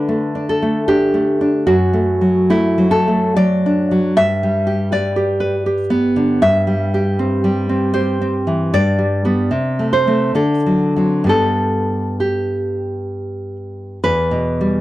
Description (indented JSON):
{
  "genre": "romantic piece for solo classical guitar",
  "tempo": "63-80 BPM",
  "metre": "3/4",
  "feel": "rubato",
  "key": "G major",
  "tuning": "A4 = 440 Hz",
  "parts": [
    { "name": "nylon-string guitar", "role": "solo", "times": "0.0-14.8 s", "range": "E2 to E5", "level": "-14 LUFS", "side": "equal", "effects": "none" }
  ],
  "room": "studio ambience",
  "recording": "dry, close 1970s-style studio recording",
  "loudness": "-14 LUFS",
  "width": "side -16 dB against mid",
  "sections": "0.0-14.0 A section",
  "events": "none",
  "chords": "0.0 D5; 1.7 D/F#; 4.2 G; 6.4 C/G; 8.7 G; 9.5 Am/C; 10.4 D7; 11.3 G; 14.0 Em"
}